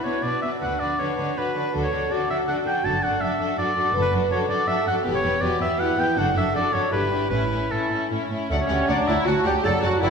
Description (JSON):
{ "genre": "quick classical-period movement for symphony orchestra", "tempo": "160 BPM", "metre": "3/4", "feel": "rubato", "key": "D major from 3.9 s", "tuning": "A4 = 440 Hz", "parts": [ { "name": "warm studio violin section", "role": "melody", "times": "0.0-10.1 s", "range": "E4 to F#5", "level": "-33 LUFS", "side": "left 5 dB", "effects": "none" }, { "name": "clear oboe", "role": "second line", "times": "0.0-10.1 s", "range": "A4 to A5", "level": "-25 LUFS", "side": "equal", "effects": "none" }, { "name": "warm studio violin section", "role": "second line", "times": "0.0-10.1 s", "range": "E4 to D5", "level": "-32 LUFS", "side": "left 1 dB", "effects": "none" }, { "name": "clear studio viola section", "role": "accompaniment", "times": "0.0-10.1 s", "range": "B3 to A4", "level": "-29 LUFS", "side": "right 1 dB", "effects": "none" }, { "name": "mellow French horn section", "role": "sustained chords", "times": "0.0-9.8 s", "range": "F#3 to B4", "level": "-28 LUFS", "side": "left 1 dB", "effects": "none" }, { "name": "warm studio cello section", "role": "bass", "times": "0.1-10.1 s", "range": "D2 to D3", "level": "-30 LUFS", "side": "right 2 dB", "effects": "none" }, { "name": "dark studio double bass section", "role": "bass", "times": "0.6-10.1 s", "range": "E1 to D2", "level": "-30 LUFS", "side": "right 2 dB", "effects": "none" }, { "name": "mellow clarinet", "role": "second line", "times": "8.5-10.1 s", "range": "D5 to E5", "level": "-29 LUFS", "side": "left 2 dB", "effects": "none" }, { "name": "mellow concert flute", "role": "second line", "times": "8.5-10.1 s", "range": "F#5 to A5", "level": "-30 LUFS", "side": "left 2 dB", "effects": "none" }, { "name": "mellow bassoon", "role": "accompaniment", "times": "8.5-10.1 s", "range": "F#3 to B3", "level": "-30 LUFS", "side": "right 2 dB", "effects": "none" } ], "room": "wet recital hall reverb, RT60 1.4 s", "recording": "recorded in a church or concert hall", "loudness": "-20 LUFS", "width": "side -5 dB against mid", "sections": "0.0-8.5 A section; 8.5-10.1 B section", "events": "none", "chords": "0.0 Bm; 0.6 Bm/D; 1.7 D; 2.8 D/F#; 5.1 Em; 6.2 D/F#; 6.9 Em7/G; 7.3 A; 8.5 D", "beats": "0.23 | 0.61 0.99 1.37 | 1.74 2.11 2.48 | 2.84 3.21 3.58 | 3.94 4.31 4.68 | 5.05 5.42 5.79 | 6.17 6.54 6.92 | 7.32 7.71 8.11 | 8.50 8.88 9.27 | 9.64 10.02" }